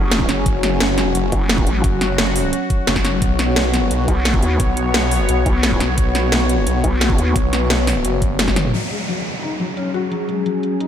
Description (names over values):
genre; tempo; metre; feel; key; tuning
dark technical drum and bass; 174 BPM; 4/4; straight; unclear; A4 = 440 Hz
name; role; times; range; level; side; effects
sweeping resonant pad; sustained chords; 0.0-10.9 s; F#3 to C#5; -21 LUFS; left 2 dB; chorus, sidechain pumping
vowel-sweep wobble bass; bass; 0.0-1.8, 4.1-7.3 s; F#1 to D#2; -18 LUFS; equal; chorus
drum and bass drum kit; drums; 0.1-10.9 s; hi-hat, snare drum, toms; -21 LUFS; equal; low-pass filter on hats, low-pass filter on snare, low-pass filter on toms, low-pass filter on room
electronic kick drum; drums; 0.2-8.5 s; none; -20 LUFS; equal; none
snarling distorted saw bass; bass; 0.3-8.7 s; F#1 to B1; -20 LUFS; equal; overdrive, sidechain pumping
felt-muted upright piano; arpeggios; 8.7-10.9 s; F#3 to F#4; -24 LUFS; left 3 dB; sidechain pumping, low-pass filter, tape echo
downlifter; sound effects; 8.7-10.9 s; none; -27 LUFS; right 1 dB; none
room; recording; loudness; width
moderate lush hall reverb, RT60 2.1 s; dreamy mix soaked in reverb; -15 LUFS; side -9 dB against mid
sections
0.0-8.7 A section; 8.7-10.9 B section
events
drop 0.0-8.7; drum fill 8.4-8.7; filter sweep on drum 8.7-10.9; filter sweep on analog synth pad 8.7-10.9; filter sweep on felt piano 8.7-10.9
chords
0.0 F#5; 3.2 B5; 8.7 F#5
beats
0.12 | 0.46 0.81 1.15 1.50 | 1.84 2.18 2.53 2.87 | 3.22 3.56 3.91 4.25 | 4.60 4.94 5.29 5.63 | 5.98 6.32 6.67 7.01 | 7.36 7.70 8.05 8.39 | 8.74 9.08 9.43 9.77 | 10.12 10.46 10.80